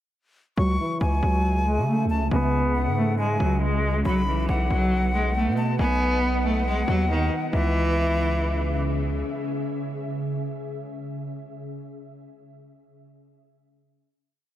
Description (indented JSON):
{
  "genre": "hip hop, drill",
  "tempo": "138 BPM",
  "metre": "4/4",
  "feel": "half-time",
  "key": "C# minor",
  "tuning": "A4 = 445 Hz",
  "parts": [
    { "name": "rich cello", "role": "melody", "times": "0.6-8.8 s", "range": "D#3 to B3", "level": "-25 LUFS", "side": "equal", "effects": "low-pass filter, tape echo" },
    { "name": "concert flute", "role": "second line", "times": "0.6-8.8 s", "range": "E5 to C#6", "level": "-30 LUFS", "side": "left 2 dB", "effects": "tape echo" },
    { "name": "ethereal airy pad", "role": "sustained chords", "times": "1.2-11.1 s", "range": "C#3 to F#5", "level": "-31 LUFS", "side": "equal", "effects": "ensemble chorus, built-in reverb, low-pass filter" },
    { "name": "distorted 808-style bass", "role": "bass", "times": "0.6-9.2 s", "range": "B1 to C#3", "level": "-24 LUFS", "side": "equal", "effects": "distortion" }
  ],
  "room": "light reverb, small room ambience",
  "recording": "none",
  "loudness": "-21 LUFS",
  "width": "side -12 dB against mid",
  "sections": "0.6-7.5 breakdown; 7.5-11.0 final chord",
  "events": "filter sweep 0.6-7.5",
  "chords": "0.6 C#m; 4.1 B; 7.5 C#m"
}